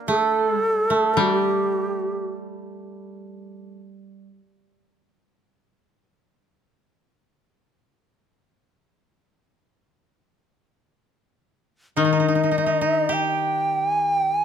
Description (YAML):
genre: japanese traditional, Japanese chamber music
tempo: free time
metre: none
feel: none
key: unclear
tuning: A4 = 440 Hz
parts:
  - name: koto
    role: second line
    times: 0.0-4.3, 12.0-14.4 s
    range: G3 to G4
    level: -25 LUFS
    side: right 4 dB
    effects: none
  - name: breathy bright long shakuhachi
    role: melody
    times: 0.1-2.3, 12.0-14.4 s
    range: G4 to G5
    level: -22 LUFS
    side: right 1 dB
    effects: none
  - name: koto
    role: accompaniment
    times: 1.2-4.4, 12.0-14.4 s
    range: Eb3 to G3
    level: -27 LUFS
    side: left 9 dB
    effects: none
room: light reverb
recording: close, detailed microphones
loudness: -19 LUFS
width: side -8 dB against mid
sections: 0.0-14.4 A section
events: none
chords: none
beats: free time